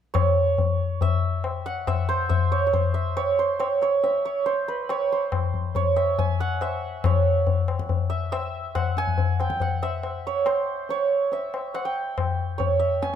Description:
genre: indian classical, Hindustani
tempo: 140 BPM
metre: 4/4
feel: straight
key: unclear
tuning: A4 = 440 Hz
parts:
  - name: santur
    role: melody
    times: 0.1-13.2 s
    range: B4 to Ab5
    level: -24 LUFS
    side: right 4 dB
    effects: none
  - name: tabla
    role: percussion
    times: 0.1-13.2 s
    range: none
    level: -24 LUFS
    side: left 5 dB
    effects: none
room: moderate recital hall reverb, RT60 1.7 s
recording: close, detailed microphones, faint mains hum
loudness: -22 LUFS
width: side -9 dB against mid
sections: 0.2-13.2 A section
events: none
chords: none

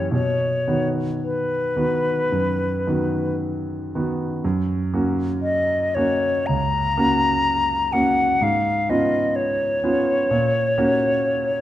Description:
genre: classical, romantic duo for flute and grand piano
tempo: 54-65 BPM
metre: 4/4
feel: rubato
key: B major, F# major from 4.4 s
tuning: A4 = 440 Hz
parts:
  - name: silver concert flute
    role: melody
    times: 0.0-11.6 s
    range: B4 to A#5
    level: -21 LUFS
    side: left 1 dB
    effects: none
  - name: clear grand piano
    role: accompaniment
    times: 0.0-11.6 s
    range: C#2 to G4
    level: -22 LUFS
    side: right 1 dB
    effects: none
room: moderate recital hall reverb, RT60 1.7 s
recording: dark, warm production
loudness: -19 LUFS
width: side -13 dB against mid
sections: 0.0-4.4 A section; 4.4-11.6 B section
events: none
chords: 0.1 B; 4.4 F#; 8.4 C#7/G#; 10.3 F#/A#

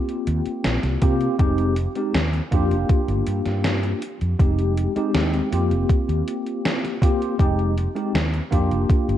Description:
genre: vaporwave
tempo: 80 BPM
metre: 4/4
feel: straight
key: F dorian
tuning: A4 = 440 Hz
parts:
  - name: tine electric piano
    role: accompaniment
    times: 0.0-9.2 s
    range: Ab3 to G4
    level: -23 LUFS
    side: left 1 dB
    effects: medium stereo tremolo, lush chorus, vintage 12-bit sampler grit, tape echo
  - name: gated 80s digital drum machine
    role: drums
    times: 0.1-9.2 s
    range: hi-hat, snare drum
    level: -26 LUFS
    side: equal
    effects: gated reverb, gated reverb snare, overdrive
  - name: fretless electric bass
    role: bass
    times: 0.3-9.2 s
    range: F1 to C3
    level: -23 LUFS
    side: equal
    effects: tube saturation, wide subtle chorus
  - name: electronic kick drum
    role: drums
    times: 1.0-9.0 s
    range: none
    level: -19 LUFS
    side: equal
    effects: overdrive
room: light reverb, digital ambience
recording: dark, warm production, cassette tape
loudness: -19 LUFS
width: side -11 dB against mid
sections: 0.0-9.2 A section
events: none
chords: 0.0 Eb69 (rootless); 1.4 Fm9; 2.9 Gm7; 4.0 Fm9; 5.9 Eb69 (rootless); 7.4 Fm9

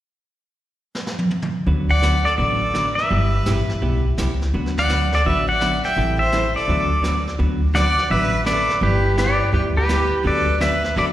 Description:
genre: country, western swing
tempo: 168 BPM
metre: 4/4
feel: swing 65% on 8ths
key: D major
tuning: A4 = 441 Hz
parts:
  - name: jazz brush drum kit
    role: drums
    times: 0.9-11.1 s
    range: brushed snare drum, hi-hat, snare drum, toms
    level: -28 LUFS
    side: equal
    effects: slapback echo
  - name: vintage hollow-body jazz guitar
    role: accompaniment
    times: 1.7-11.1 s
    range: D3 to B4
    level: -25 LUFS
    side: right 1 dB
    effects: slapback echo
  - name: upright bass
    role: bass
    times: 1.7-11.1 s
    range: G1 to D2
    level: -21 LUFS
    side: equal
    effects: none
  - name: pedal steel guitar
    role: melody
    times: 1.9-11.0 s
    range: G4 to G5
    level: -20 LUFS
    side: left 1 dB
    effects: slapback echo
  - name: clear fiddle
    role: second line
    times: 1.9-11.1 s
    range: G4 to E5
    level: -27 LUFS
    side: right 2 dB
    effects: slapback echo
room: light reverb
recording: live gig heard through the venue's PA, recital hall reverb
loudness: -17 LUFS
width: side -13 dB against mid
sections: 0.2-1.7 A section; 1.7-7.4 B section; 7.4-11.1 C section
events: drum fill 0.9-1.7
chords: 0.2 N.C.; 1.7 D6; 3.1 G6; 4.5 D6; 6.0 Am7; 6.7 D6; 8.8 G6; 10.3 D6

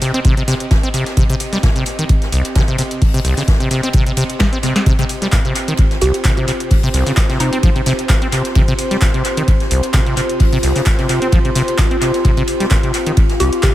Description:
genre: acid house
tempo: 130 BPM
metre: 4/4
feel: swing 54% on 16ths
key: C minor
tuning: A4 = 440 Hz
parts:
  - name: acid bass, saw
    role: riff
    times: 0.0-13.7 s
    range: C2 to C4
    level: -19 LUFS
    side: equal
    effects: tube saturation, sidechain pumping, tape echo
  - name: booming analog drum machine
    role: drums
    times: 0.0-13.7 s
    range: handclaps, hi-hat, snare drum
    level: -22 LUFS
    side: equal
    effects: tape echo
  - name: swinging big-band drum kit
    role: drums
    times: 0.0-13.7 s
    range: hi-hat, ride cymbal, snare drum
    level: -28 LUFS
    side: right 1 dB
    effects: sidechain pumping on cymbals, high-pass filter on cymbals, sidechain pumping on hats, high-pass filter on hats, high-pass filter on snare, high-pass filter on room, tape echo
  - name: airy breathy pad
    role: texture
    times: 0.0-13.7 s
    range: C4 to F5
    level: -25 LUFS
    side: equal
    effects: chorus, sidechain pumping
  - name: electronic kick drum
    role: drums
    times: 0.2-13.7 s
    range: none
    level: -14 LUFS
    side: equal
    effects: none
  - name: warbly tape-like pad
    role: sustained chords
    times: 4.9-13.7 s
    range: F4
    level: -23 LUFS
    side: equal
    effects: chorus, built-in reverb, sidechain pumping
  - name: hollow square pluck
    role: melody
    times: 6.0-7.8, 13.4-13.7 s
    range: Eb4 to G4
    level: -22 LUFS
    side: right 1 dB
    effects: chorus, analog delay
room: light reverb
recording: echo-heavy mix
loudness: -13 LUFS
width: side -14 dB against mid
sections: 0.0-13.7 A section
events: fade-in on analog synth pad 0.0-13.7; drum fill 4.4-4.9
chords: 0.0 Cm

